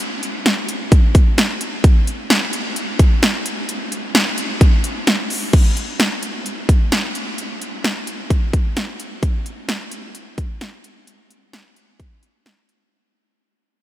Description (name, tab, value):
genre	pop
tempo	130 BPM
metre	4/4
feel	straight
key	none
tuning	none
part	house drum kit	drums	0.0-12.8 s	crash cymbal, hi-hat, kick drum, snare drum	-16 LUFS	equal	none
room	moderate huge ambient reverb, RT60 8.1 s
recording	dreamy mix soaked in reverb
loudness	-15 LUFS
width	side -14 dB against mid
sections	0.0-5.5 A section; 5.5-12.9 B section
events	fade-out 5.5-12.9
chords	none